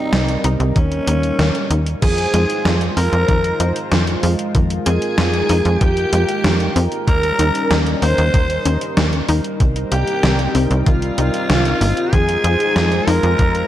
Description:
synthwave; 95 BPM; 4/4; straight; F minor; A4 = 440 Hz
growling alto saxophone; melody; 0.0-13.7 s; Db4 to C5; -21 LUFS; equal; tape echo
chorused pulse-width pad; sustained chords; 0.0-13.7 s; G3 to C5; -24 LUFS; left 1 dB; sidechain pumping
wide unison pluck; arpeggios; 0.1-13.7 s; Eb3 to Ab4; -26 LUFS; left 3 dB
tight sequencer bass; bass; 0.1-13.6 s; G1 to F2; -18 LUFS; equal; sidechain pumping
gated 80s digital drum machine; drums; 0.1-13.7 s; crash cymbal, hi-hat, snare drum; -22 LUFS; right 1 dB; gated reverb, gated reverb snare
electronic kick drum; drums; 0.8-13.5 s; -16 LUFS; equal
airy dreamy lead; second line; 2.0-13.7 s; F4 to C5; -27 LUFS; equal; chorus, vintage 12-bit sampler grit, tape echo
light reverb; dark, warm production; -14 LUFS; side -12 dB against mid
0.0-2.0 A section; 2.0-13.7 B section
0.0 Cm7; 0.8 Eb; 2.0 Fm7; 7.1 Eb7; 9.6 Cm7; 12.1 Fm7
0.13 0.76 1.39 | 2.02 2.65 3.29 3.92 | 4.55 5.18 5.81 6.45 | 7.08 7.71 8.34 8.97 | 9.60 10.23 10.87 11.50 | 12.13 12.76 13.39

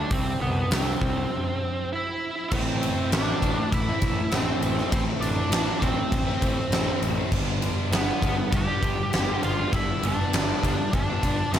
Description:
quiet-loud alternative rock; 100 BPM; 4/4; straight; A minor; A4 = 440 Hz
octave-fuzz lead guitar; melody; 0.0-11.6 s; B3 to G5; -28 LUFS; right 1 dB; distortion
fuzz picked electric bass; bass; 0.0-11.6 s; G1 to C2; -29 LUFS; equal; overdrive
huge arena drum kit; drums; 0.1-11.6 s; crash cymbal, hi-hat, kick drum, ride cymbal, snare drum; -26 LUFS; equal
overdriven electric guitar; riff; 2.5-11.6 s; G2 to E4; -30 LUFS; left 1 dB; slapback echo
moderate lush hall reverb, RT60 2.7 s; big arena sound; -22 LUFS; side -10 dB against mid
0.0-2.5 A section; 2.5-11.6 B section
break 1.3-2.5
0.1 C; 2.5 Am; 7.3 G
| 0.12 0.72 1.32 1.92 | 2.52 3.12 3.72 4.32 | 4.92 5.53 6.12 6.73 | 7.33 7.93 8.53 9.13 | 9.73 10.33 10.93 11.53

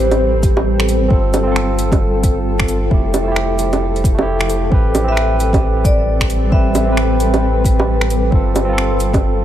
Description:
future garage; 133 BPM; 4/4; swing 61% on 16ths; A minor; A4 = 440 Hz
vibraphone with medium hard mallets; melody; 0.0-0.3, 5.1-7.0 s; C5 to E5; -23 LUFS; left 2 dB; tape echo
barky tine electric piano; accompaniment; 0.0-9.4 s; A3 to C5; -20 LUFS; right 3 dB; sidechain pumping, tape echo
granular cloud pad; sustained chords; 0.0-9.4 s; F3 to C5; -20 LUFS; left 2 dB; built-in reverb, sidechain pumping
soft dub sub bass; bass; 0.0-9.4 s; F1 to A1; -18 LUFS; equal
deep house drum kit; drums; 0.1-9.2 s; bongos, cabasa, finger snaps, hi-hat; -21 LUFS; right 2 dB; overdrive, studio reverb
electronic kick drum; drums; 0.4-9.2 s; -15 LUFS; equal; overdrive, studio reverb
light reverb, digital ambience; -13 LUFS; side -11 dB against mid
0.0-9.4 A section
0.0 Am9; 1.1 G9sus4; 2.9 Fmaj7; 4.7 Am9; 8.3 G9sus4
0.20 0.66 | 1.11 1.56 2.01 2.46 | 2.91 3.36 3.81 4.27 | 4.72 5.17 5.62 6.07 | 6.52 6.97 7.42 7.88 | 8.33 8.78 9.23

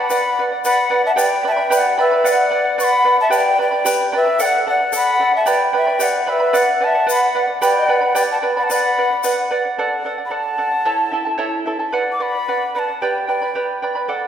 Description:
andean folk, Andean ensemble; 112 BPM; 2/4; straight; A4 = 439 Hz
breathy quena; melody; 0.0-13.8 s; E5 to D6; -19 LUFS; left 2 dB
polished pan flute; second line; 0.0-9.5 s; B4 to F#5; -21 LUFS; left 2 dB
charango; accompaniment; 0.0-14.3 s; E4 to B5; -18 LUFS; right 2 dB
egg shaker; percussion; 0.1-9.4 s; -29 LUFS; left 5 dB
wet scoring stage reverb, RT60 1.7 s; recorded in a church or concert hall; -15 LUFS; side -9 dB against mid
0.0-1.2 A section; 1.2-9.8 A section; 9.8-14.3 B section
0.1 Bm; 1.2 G; 2.2 Bm; 3.3 G; 4.4 D; 5.5 G; 6.5 Bm; 7.6 G; 8.7 Bm; 9.8 D; 10.8 A; 11.9 Bm; 13.0 G
| 0.10 0.64 | 1.17 1.71 | 2.25 2.79 | 3.32 3.86 | 4.40 4.93 | 5.47 6.01 | 6.54 7.08 | 7.62 8.15 | 8.69 9.23 | 9.77 10.31 | 10.85 11.39 | 11.93 12.46 | 13.01 13.54 | 14.09

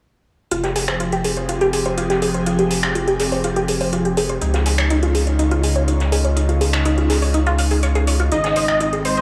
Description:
progressive house; 123 BPM; 4/4; straight; F minor; A4 = 440 Hz
airy breathy pad; sustained chords; 0.5-9.2 s; Db3 to Ab4; -25 LUFS; equal; chorus, phaser
glassy wavetable pluck; arpeggios; 0.5-9.2 s; Eb4 to F5; -24 LUFS; equal; chorus, dub echo
saturated sub bass; bass; 0.5-9.2 s; F1 to Db2; -23 LUFS; equal
house drum kit; drums; 0.5-9.2 s; finger snaps, hi-hat; -28 LUFS; equal; overdrive
natural country drum kit; drums; 0.5-9.2 s; hi-hat, snare drum; -36 LUFS; equal; high-pass filter on hats, low-pass filter on hats, high-pass filter on snare, low-pass filter on snare, high-pass filter on room, low-pass filter on room
unison lead; melody; 8.3-9.2 s; C5 to Eb5; -21 LUFS; equal; dub echo
light reverb, digital ambience; small room reverb; -19 LUFS; mono
0.5-9.2 A section
filter sweep on synth arpeggio sound 0.5-9.2
0.5 Fmadd9; 4.4 Dbadd9; 8.3 Ab
| 0.52 1.00 1.49 1.98 | 2.47 2.95 3.44 3.93 | 4.42 4.91 5.39 5.88 | 6.37 6.86 7.34 7.83 | 8.32 8.81

